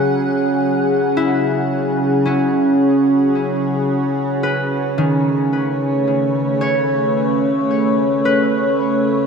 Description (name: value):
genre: ambient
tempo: 55 BPM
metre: 4/4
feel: straight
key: unclear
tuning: A4 = 439 Hz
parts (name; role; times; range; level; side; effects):
- evolving wavetable pad; sustained chords; 0.0-9.3 s; C#3 to F#5; -16 LUFS; equal; chorus, built-in reverb
- concert harp; arpeggios; 0.0-9.3 s; D#3 to C#5; -21 LUFS; left 1 dB; ping-pong delay
room: wet plate reverb, RT60 2.8 s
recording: dreamy mix soaked in reverb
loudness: -15 LUFS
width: side -6 dB against mid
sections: 0.0-9.3 A section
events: none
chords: 0.0 E69/C#; 4.4 B9/C#